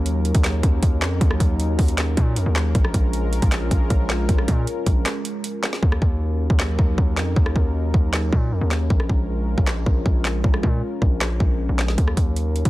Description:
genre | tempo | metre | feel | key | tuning
hip hop, trap | 156 BPM | 4/4 | half-time | Eb minor | A4 = 440 Hz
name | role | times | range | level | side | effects
warm analog pad | sustained chords | 0.0-12.7 s | Gb3 to Bb4 | -28 LUFS | equal | chorus
distorted 808-style bass | bass | 0.0-12.7 s | Bb1 to Bb2 | -22 LUFS | equal | distortion
trap drum kit | drums | 0.1-12.7 s | handclaps, hi-hat, kick drum, rim click, snare drum | -20 LUFS | equal | none
room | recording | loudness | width
little or no reverb | dense, heavily limited modern master | -18 LUFS | side -17 dB against mid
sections
0.0-5.8 A section; 5.8-12.7 B section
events
break 5.1-5.8; hi-hats muted 5.8-12.0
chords
0.0 Ebm7; 2.7 Bbm7; 5.8 Ebm7; 8.9 Bbm7; 12.0 Ebm7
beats
0.06 0.44 0.83 | 1.21 1.59 1.98 2.36 | 2.75 3.13 3.52 3.90 | 4.29 4.67 5.06 5.44 | 5.83 6.21 6.59 6.98 | 7.36 7.75 8.13 8.52 | 8.90 9.29 9.67 10.06 | 10.44 10.83 11.21 11.60 | 11.98 12.36

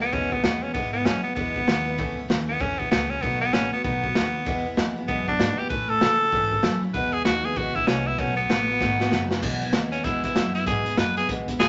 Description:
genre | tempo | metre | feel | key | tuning
rockabilly | 194 BPM | 4/4 | swing 62% on 8ths | E major | A4 = 440 Hz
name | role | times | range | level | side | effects
raspy tenor saxophone | melody | 0.0-11.7 s | B3 to B4 | -27 LUFS | equal | none
picked steel-string acoustic guitar | accompaniment | 0.0-11.7 s | E2 to F#4 | -33 LUFS | equal | none
upright bass | bass | 0.0-11.7 s | F#1 to C#3 | -34 LUFS | equal | none
raw garage drum kit | drums | 0.1-11.7 s | crash cymbal, hi-hat, kick drum, snare drum | -28 LUFS | equal | none
room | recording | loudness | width
light reverb | nothing above 7.8 kHz | -24 LUFS | mono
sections
0.0-9.4 A section; 9.4-11.7 B section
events
drum fill 8.8-9.4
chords
0.0 E; 2.0 A; 3.2 B7; 4.5 E; 5.7 A; 6.9 E; 8.2 B7; 9.4 E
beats
0.13 0.44 | 0.75 1.06 1.37 1.68 | 1.99 2.30 2.61 2.92 | 3.23 3.54 3.85 4.16 | 4.47 4.78 5.09 5.40 | 5.71 6.02 6.33 6.64 | 6.95 7.26 7.57 7.88 | 8.19 8.49 8.80 9.12 | 9.43 9.74 10.05 10.36 | 10.67 10.98 11.29 11.60

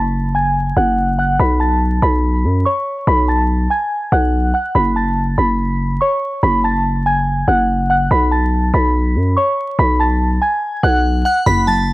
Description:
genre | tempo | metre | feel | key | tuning
hip hop, trap | 143 BPM | 4/4 | half-time | unclear | A4 = 440 Hz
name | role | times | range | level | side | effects
glassy synth bell | melody | 0.0-11.9 s | C#5 to B6 | -17 LUFS | equal | chorus, low-pass filter
growling 808-style bass | bass | 0.0-11.9 s | F#1 to F#2 | -15 LUFS | equal | none
hollow square pluck | accompaniment | 11.5-11.9 s | F#2 to F#3 | -20 LUFS | equal | chorus, low-pass filter, cassette tape
room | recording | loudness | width
little or no reverb | home recording on cassette, vinyl crackle | -13 LUFS | side -18 dB against mid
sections
0.0-11.9 A section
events
filter sweep 0.0-11.5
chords
0.0 F#m; 1.4 B5; 4.8 F#m; 8.1 B5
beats
0.14 0.56 0.97 | 1.39 1.81 2.23 2.65 | 3.07 3.49 3.91 4.33 | 4.75 5.17 5.59 6.01 | 6.43 6.85 7.27 7.69 | 8.11 8.53 8.95 9.37 | 9.79 10.21 10.62 11.04 | 11.46 11.88

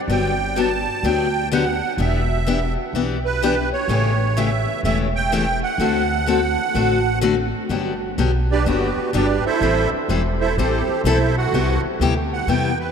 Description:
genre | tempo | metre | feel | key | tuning
acoustic string swing (jazz manouche) | 126 BPM | 4/4 | swing 65% on 8ths | G major | A4 = 441 Hz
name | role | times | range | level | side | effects
musette accordion | melody | 0.1-12.9 s | B3 to A5 | -22 LUFS | right 5 dB | none
picked steel-string acoustic guitar | accompaniment | 0.1-12.7 s | C3 to A4 | -22 LUFS | left 5 dB | none
upright bass | bass | 0.1-12.9 s | E1 to E2 | -23 LUFS | equal | none
room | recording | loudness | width
wet cathedral reverb, RT60 6.0 s | in a vast, echoing space | -17 LUFS | side -7 dB against mid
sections
0.0-7.7 A section; 7.7-12.9 B section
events
accordion solo 7.7-12.9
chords
0.1 Gmaj7; 2.0 Em7; 3.9 A7; 5.8 D7; 7.7 Gmaj7; 9.6 Am7; 11.5 Cmaj9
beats
| 0.09 0.56 1.04 1.51 | 1.99 2.46 2.94 3.41 | 3.89 4.37 4.84 5.32 | 5.79 6.27 6.75 7.22 | 7.70 8.18 8.66 9.13 | 9.61 10.09 10.57 11.04 | 11.52 12.00 12.48

